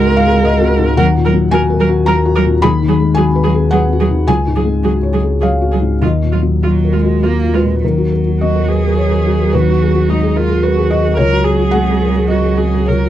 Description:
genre	neoclassical piano and strings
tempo	97-112 BPM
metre	3/4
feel	rubato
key	Eb minor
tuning	A4 = 441 Hz
part	rich cello	second line	0.0-13.1 s	Gb3 to Bb3	-18 LUFS	right 6 dB	none
part	felt-muted upright piano	accompaniment	0.0-13.1 s	Db2 to Cb6	-14 LUFS	left 4 dB	none
part	rich viola	accompaniment	0.0-13.1 s	Eb4 to Bb4	-19 LUFS	right 3 dB	none
part	sub bass with octave	bass	0.0-13.1 s	Db2 to Eb2	-17 LUFS	equal	none
room	light reverb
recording	dry, close 1970s-style studio recording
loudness	-11 LUFS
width	side -12 dB against mid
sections	0.0-7.8 A section; 7.8-13.1 B section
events	none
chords	0.0 Gbadd9/Db; 1.0 Ebm; 2.6 Abm7/Eb; 4.3 Dbsus4; 6.0 Ebmadd9; 7.8 Ebm; 9.5 Abm7/Eb; 11.2 Dbsus4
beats	0.43 | 0.97 1.52 2.06 | 2.61 3.16 3.71 | 4.28 4.84 5.42 | 6.02 6.63 7.23 | 7.83 8.40 8.97 | 9.53 10.08 10.63 | 11.17 11.72 12.29 | 12.87

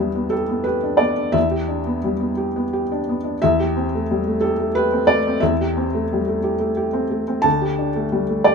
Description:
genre	neoclassical minimalist piano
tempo	89 BPM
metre	3/4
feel	rubato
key	unclear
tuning	A4 = 440 Hz
part	felt-muted upright piano	solo	0.0-8.5 s	D2 to A5	-18 LUFS	equal	none
room	light reverb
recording	minimal, uncompressed stereo recording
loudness	-18 LUFS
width	side -5 dB against mid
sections	0.0-8.5 A section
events	none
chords	0.0 Em7; 3.4 Am7/E; 7.4 Dsus4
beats	0.00 0.67 | 1.35 2.03 2.71 | 3.39 4.07 4.74 | 5.40 6.07 6.75 | 7.44 8.11

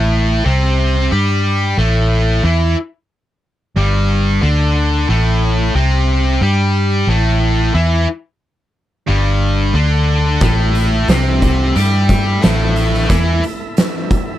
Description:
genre	blues rock power trio and southern rock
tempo	90 BPM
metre	4/4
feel	straight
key	unclear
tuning	A4 = 443 Hz
part	distorted electric guitar	riff	0.0-13.4 s	G2 to G4	-17 LUFS	left 1 dB	overdrive
part	vintage muted fingered electric bass	bass	0.0-13.4 s	G1 to G2	-14 LUFS	equal	none
part	overdriven tonewheel organ	sustained chords	10.4-14.4 s	E4 to E5	-28 LUFS	right 3 dB	slow rotary speaker
part	oversized low-tuned drum kit	drums	10.4-14.3 s	hi-hat, kick drum, snare drum	-17 LUFS	equal	none
room	little or no reverb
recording	none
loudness	-12 LUFS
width	side -13 dB against mid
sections	0.0-14.4 A section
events	none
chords	0.0 A5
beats	0.45 1.11 1.78 | 2.44 3.10 3.76 4.42 | 5.09 5.75 6.42 7.08 | 7.75 8.42 9.09 9.75 | 10.42 11.09 11.76 12.43 | 13.10 13.77

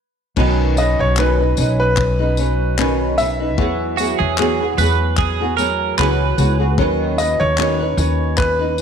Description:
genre	acoustic pop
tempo	75 BPM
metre	4/4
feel	swing 55% on 16ths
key	B major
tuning	A4 = 440 Hz
part	flamenco guitar	accompaniment	0.4-8.8 s	B2 to B4	-20 LUFS	equal	double-tracked left and right
part	upright bass	bass	0.4-8.8 s	B1 to E2	-19 LUFS	equal	none
part	loose indie drum kit	drums	0.4-8.8 s	crash cymbal, handclaps, kick drum, tambourine	-24 LUFS	left 3 dB	none
part	bright upright piano	melody	0.8-8.8 s	B4 to E5	-20 LUFS	equal	slapback echo
part	twelve-string electric guitar	second line	4.0-7.0 s	F#4 to B4	-21 LUFS	right 12 dB	slapback echo
room	light reverb, small room ambience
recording	1960s-style stereo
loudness	-15 LUFS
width	side -7 dB against mid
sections	0.4-8.8 A section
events	stop 0.0-0.4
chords	0.4 Badd9; 3.6 Eadd9; 6.8 Badd9/D#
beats	| 0.37 1.17 1.97 2.78 | 3.58 4.38 5.18 5.98 | 6.78 7.58 8.38

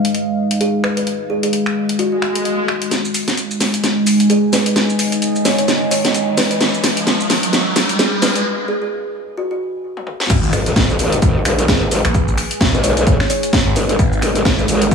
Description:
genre	bass house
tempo	130 BPM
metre	4/4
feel	swing 58% on 16ths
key	G# dorian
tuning	A4 = 439 Hz
part	deep dark ambient pad	sustained chords	0.0-14.9 s	G#3 to G#5	-19 LUFS	right 1 dB	chorus, built-in reverb, vintage 12-bit sampler grit, sidechain pumping
part	garage drum kit	drums	0.0-14.9 s	crash cymbal, finger snaps, hi-hat, shaker, snare drum, toms	-18 LUFS	equal	studio ambience
part	kalimba	melody	0.6-14.0 s	F#4 to C#5	-23 LUFS	equal	dub echo
part	swell, riser and impact	sound effects	2.1-12.1 s	none	-24 LUFS	equal	none
part	phased detuned saw bass	bass	10.3-14.2 s	G#1 to B1	-20 LUFS	equal	phaser, overdrive, sidechain pumping
part	electronic kick drum	drums	10.3-14.9 s	none	-17 LUFS	equal	studio ambience
part	growl bass	bass	10.5-14.9 s	G#1 to B1	-17 LUFS	left 1 dB	chorus, sidechain pumping
room	light reverb, digital ambience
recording	high-pass filter, small room ambience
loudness	-14 LUFS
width	side -5 dB against mid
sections	0.0-2.9 A section; 2.9-10.3 B section; 10.3-14.9 C section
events	swell 2.1-2.9; build-up 2.9-10.3; drum fill 2.9-8.5, 10.0-10.3; riser 2.9-8.5; break 8.5-10.3; drop 10.3-14.9; impact 10.3-12.1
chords	0.0 G#5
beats	0.14 0.61 | 1.07 1.53 1.99 2.45 | 2.91 3.38 3.84 4.30 | 4.76 5.22 5.68 6.14 | 6.61 7.07 7.53 7.99 | 8.45 8.91 9.38 9.84 | 10.30 10.76 11.22 11.68 | 12.14 12.61 13.07 13.53 | 13.99 14.45 14.91

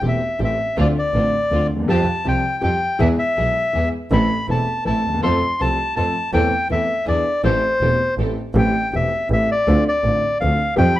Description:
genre	tango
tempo	162 BPM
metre	3/4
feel	rubato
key	A minor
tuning	A4 = 440 Hz
part	bandoneon	melody	0.0-11.0 s	C5 to C6	-20 LUFS	left 1 dB	none
part	warm grand piano	accompaniment	0.0-10.9 s	E1 to A4	-22 LUFS	left 1 dB	none
part	warm symphonic string section	stabs	0.0-8.3 s	A3 to A4	-31 LUFS	right 3 dB	analog delay
part	clear double bass	bass	0.0-10.9 s	E1 to F2	-22 LUFS	right 1 dB	none
room	light reverb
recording	none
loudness	-16 LUFS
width	side -14 dB against mid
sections	0.0-8.6 A section; 8.6-11.0 A section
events	none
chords	0.0 Am7; 0.8 Dm7; 1.9 Fsus2; 3.0 E; 4.1 Am; 5.2 F; 6.3 Am/E; 7.1 E7; 7.4 Am7; 9.7 Dm7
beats	0.02 0.39 | 0.77 1.14 1.51 | 1.88 2.25 2.62 | 3.00 3.37 3.74 | 4.11 4.49 4.86 | 5.23 5.60 5.97 | 6.33 6.70 7.07 | 7.44 7.81 8.18 | 8.55 8.93 9.30 | 9.66 10.03 10.40 | 10.77

